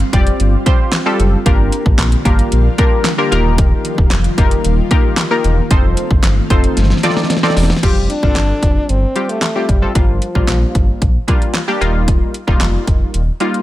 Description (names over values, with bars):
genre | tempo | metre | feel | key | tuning
dance-pop | 113 BPM | 4/4 | straight | unclear | A4 = 441 Hz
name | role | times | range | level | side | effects
ethereal airy pad | sustained chords | 0.0-7.8 s | D3 to F4 | -24 LUFS | left 1 dB | ensemble chorus, built-in reverb, sidechain pumping
sub bass with octave | bass | 0.0-13.3 s | Eb1 to Bb1 | -15 LUFS | equal | sidechain pumping
pop drum kit | drums | 0.0-13.6 s | crash cymbal, handclaps, hi-hat, kick drum, snare drum | -14 LUFS | equal | none
funky polysynth comp | accompaniment | 0.1-13.6 s | G3 to D5 | -18 LUFS | left 1 dB | chorus
mellow French horn | melody | 8.1-11.0 s | F3 to D4 | -21 LUFS | left 1 dB | digital delay
room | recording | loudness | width
digital ambience | none | -12 LUFS | side -15 dB against mid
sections
0.0-7.8 A section; 7.8-13.6 B section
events
drop 0.0-7.8; drum fill 6.8-7.8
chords
0.0 Fsus2; 1.5 Gm7; 3.3 Ebadd9; 5.7 F7; 7.8 Fsus2; 10.0 Gm7; 11.8 Ebadd9